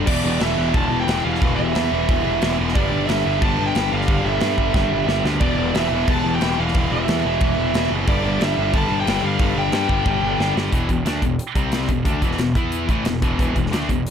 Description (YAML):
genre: heavy metal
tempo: 180 BPM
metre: 4/4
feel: straight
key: E minor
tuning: A4 = 441 Hz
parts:
  - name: rich chamber string section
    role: sustained chords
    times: 0.0-10.7 s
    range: D3 to B4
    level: -34 LUFS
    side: right 1 dB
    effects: none
  - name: scooped high-gain guitar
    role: riff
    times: 0.0-14.0 s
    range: E2 to E4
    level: -25 LUFS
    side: right 10 dB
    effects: distortion
  - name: tight distorted guitar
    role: riff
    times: 0.0-14.0 s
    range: E2 to E4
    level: -25 LUFS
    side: left 12 dB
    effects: distortion
  - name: fuzz picked electric bass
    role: bass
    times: 0.0-14.0 s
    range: E1 to G2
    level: -24 LUFS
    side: equal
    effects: overdrive
  - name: high-gain lead guitar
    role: melody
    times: 0.1-10.5 s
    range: D5 to A5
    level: -24 LUFS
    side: right 2 dB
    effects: distortion
  - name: modern studio drum kit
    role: drums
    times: 0.1-14.1 s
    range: crash cymbal, hi-hat, kick drum, snare drum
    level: -23 LUFS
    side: equal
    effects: none
room: light reverb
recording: dark, warm production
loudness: -17 LUFS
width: side -8 dB against mid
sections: 0.1-10.7 A section; 10.7-14.1 B section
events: drum fill 4.8-5.4, 10.1-10.7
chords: 0.1 Em; 2.8 G; 5.4 Em; 8.1 G; 10.7 E5; 11.6 C5; 11.9 E5